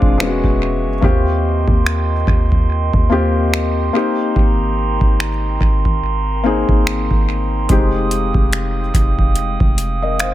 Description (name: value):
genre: contemporary R&B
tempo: 72 BPM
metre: 4/4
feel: swing 58% on 16ths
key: unclear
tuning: A4 = 440 Hz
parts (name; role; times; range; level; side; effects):
- felt-muted upright piano; accompaniment; 0.0-10.3 s; Ab3 to F5; -20 LUFS; left 4 dB; none
- glass harmonica; sustained chords; 0.0-10.3 s; Ab3 to Eb6; -24 LUFS; right 5 dB; sidechain pumping
- warm 808-style bass; bass; 0.0-10.3 s; E1 to Eb2; -19 LUFS; equal; none
- booming analog drum machine; drums; 0.0-10.3 s; finger snaps, hi-hat, kick drum; -16 LUFS; equal; none
room: light reverb, small room reverb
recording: echo-heavy mix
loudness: -14 LUFS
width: side -14 dB against mid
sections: 0.0-10.3 A section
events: break 0.0-7.7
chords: 0.2 E6; 1.0 Eb6; 3.9 Abmaj9; 7.7 Fm9